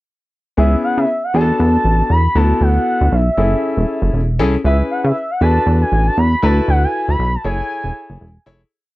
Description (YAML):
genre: early-eighties boogie funk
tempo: 118 BPM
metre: 4/4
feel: swing 56% on 16ths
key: F# minor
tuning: A4 = 438 Hz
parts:
  - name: gliding portamento lead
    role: melody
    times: 0.6-8.4 s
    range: E5 to B5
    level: -19 LUFS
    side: equal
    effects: chorus, slapback echo
  - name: warm concert grand piano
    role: accompaniment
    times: 0.6-8.6 s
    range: B3 to C#5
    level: -20 LUFS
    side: left 3 dB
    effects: none
  - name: plucky analog bass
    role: bass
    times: 0.6-8.6 s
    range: E1 to C#3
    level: -14 LUFS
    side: equal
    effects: none
room: little or no reverb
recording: dry, close 1970s-style studio recording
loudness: -13 LUFS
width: side -18 dB against mid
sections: 0.6-8.7 verse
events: fade-out 6.7-8.7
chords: 0.6 C#m7; 1.3 E9sus4; 2.4 D69; 3.4 F#m9; 4.6 C#m7; 5.4 E9sus4; 6.4 D69; 7.4 F#m9